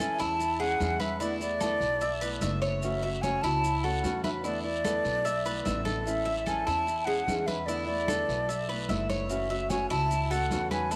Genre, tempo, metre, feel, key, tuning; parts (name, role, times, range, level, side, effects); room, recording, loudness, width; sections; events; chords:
latin, Cuban son and guajira; 148 BPM; 4/4; straight; A4 = 439 Hz
breathy mellow silver concert flute; melody; 0.0-11.0 s; D5 to A5; -33 LUFS; equal
nylon-string guitar; accompaniment; 0.0-11.0 s; C#3 to F#4; -38 LUFS; equal
Cuban tres; arpeggios; 0.0-11.0 s; E4 to E5; -36 LUFS; equal
congas; percussion; 0.0-11.0 s; -40 LUFS; equal
maracas; percussion; 0.0-11.0 s; -48 LUFS; equal
upright bass; bass; 0.2-11.0 s; F#1 to E2; -38 LUFS; equal
guiro; percussion; 0.2-11.0 s; -46 LUFS; equal
moderate plate reverb, RT60 3.8 s; -29 LUFS; mono
0.0-11.0 A section
0.0 Amaj7; 1.2 E7sus4; 2.8 F#m7; 4.4 E7sus4; 6.1 Amaj7; 7.7 E7sus4; 9.3 F#m7